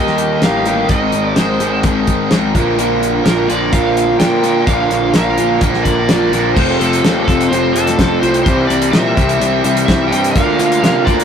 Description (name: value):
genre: classic rock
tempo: 127 BPM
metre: 4/4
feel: straight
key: unclear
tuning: A4 = 440 Hz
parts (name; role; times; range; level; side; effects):
- overdriven slide guitar; melody; 0.0-11.2 s; A4 to G5; -20 LUFS; equal; none
- overdriven semi-hollow guitar; riff; 0.0-11.2 s; F2 to Bb4; -17 LUFS; left 6 dB; none
- raw garage guitar; riff; 0.0-11.2 s; F2 to Eb4; -17 LUFS; right 6 dB; overdrive
- fuzz picked electric bass; bass; 0.0-11.2 s; F1 to C3; -20 LUFS; equal; overdrive
- damped 70s drum kit; drums; 0.1-11.2 s; crash cymbal, hi-hat, kick drum, snare drum; -16 LUFS; equal; none
room: moderate studio ambience, RT60 0.5 s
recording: rough rehearsal-room recording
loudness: -11 LUFS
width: side -7 dB against mid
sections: 0.0-6.6 A section; 6.6-11.2 B section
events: none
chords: 0.0 Eb; 0.9 Ab; 2.5 Bb; 6.6 F; 8.5 C; 10.4 Bb/D